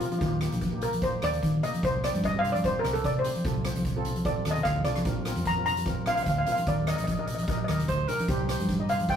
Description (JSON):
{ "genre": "calypso", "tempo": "149 BPM", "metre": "4/4", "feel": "swing 54% on 16ths", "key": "unclear", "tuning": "A4 = 440 Hz", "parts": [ { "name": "steel pan", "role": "melody", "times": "0.0-9.2 s", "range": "F4 to Bb5", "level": "-28 LUFS", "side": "equal", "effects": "none" }, { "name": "steel pan", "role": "accompaniment", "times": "0.0-9.2 s", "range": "Bb3 to Eb5", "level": "-37 LUFS", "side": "left 2 dB", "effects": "none" }, { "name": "street-band drum kit", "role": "drums", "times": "0.0-9.2 s", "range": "hi-hat, kick drum, rim click", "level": "-32 LUFS", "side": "right 1 dB", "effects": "none" }, { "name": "congas", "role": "percussion", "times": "0.0-9.1 s", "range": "none", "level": "-34 LUFS", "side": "equal", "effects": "none" }, { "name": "hollow-body short-scale fingered electric bass", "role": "bass", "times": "0.2-9.2 s", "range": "Bb1 to Eb3", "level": "-31 LUFS", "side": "left 1 dB", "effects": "none" }, { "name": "breathy alto saxophone", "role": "second line", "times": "7.9-8.8 s", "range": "G4 to C5", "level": "-31 LUFS", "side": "right 4 dB", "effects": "none" } ], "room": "wet studio reverb, RT60 0.6 s", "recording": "rough rehearsal-room recording", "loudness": "-25 LUFS", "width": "side -8 dB against mid", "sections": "0.0-9.2 A section", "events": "steel pan solo 0.0-9.2", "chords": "0.2 Ebmaj7; 1.8 Cm; 3.4 F/C; 5.1 Bbsus2; 6.7 Eb; 8.3 Cm" }